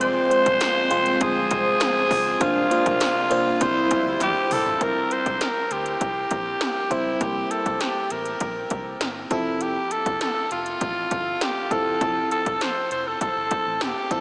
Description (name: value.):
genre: 1980s-style pop.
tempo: 100 BPM.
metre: 4/4.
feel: straight.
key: C mixolydian.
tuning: A4 = 440 Hz.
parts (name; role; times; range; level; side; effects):
raspy alto saxophone; melody; 0.0-14.2 s; E4 to C5; -23 LUFS; equal; diffuse ambient delay.
FM electric piano; accompaniment; 0.0-14.2 s; F3 to C5; -26 LUFS; equal; chorus, phaser.
brassy analog pad; sustained chords; 0.0-4.8 s; C3 to E4; -31 LUFS; equal; chorus.
vintage muted fingered electric bass; bass; 0.0-14.2 s; E1 to E2; -42 LUFS; equal; none.
80s electronic pad drums; drums; 0.0-14.2 s; hi-hat, kick drum, snare drum, tambourine, toms; -29 LUFS; equal; gated reverb on snare and toms.
group handclap; percussion; 0.6-4.3 s; none; barely audible; none; none.
room: wet huge ambient reverb, RT60 7.9 s.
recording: dreamy mix soaked in reverb, small speaker sound.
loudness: -20 LUFS.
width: side -31 dB against mid.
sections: 0.0-4.8 A section; 4.8-14.2 B section.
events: drum fill 4.2-4.8.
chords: 0.0 Fm/C; 2.4 Bbadd9/C; 3.6 C; 4.8 C7; 9.3 Fmaj7.